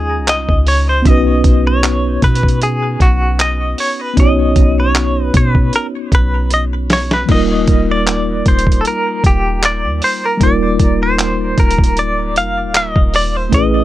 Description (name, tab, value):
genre	contemporary R&B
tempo	77 BPM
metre	4/4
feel	swing 54% on 16ths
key	unclear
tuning	A4 = 440 Hz
part	direct-recorded clean electric guitar	melody	0.0-13.8 s	Gb4 to F5	-17 LUFS	equal	tremolo, digital delay
part	mellow tine electric piano	accompaniment	0.0-13.8 s	F3 to Eb5	-18 LUFS	equal	medium stereo tremolo
part	warm 808-style bass	bass	0.0-13.8 s	D1 to Cb3	-17 LUFS	equal	none
part	dusty soul sampler-style drum kit	drums	0.3-13.7 s	crash cymbal, handclaps, hi-hat, kick drum, snare drum	-14 LUFS	equal	none
room	little or no reverb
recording	none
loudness	-11 LUFS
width	side -14 dB against mid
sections	0.0-13.8 A section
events	drum fill 6.5-7.3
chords	0.0 Dbmaj9; 1.1 Cbadd9; 7.3 Ebmaj9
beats	0.28 | 1.06 1.83 2.61 3.39 | 4.17 4.95 5.73 6.51 | 7.29 8.07 8.85 9.63 | 10.41 11.19 11.96 12.74 | 13.52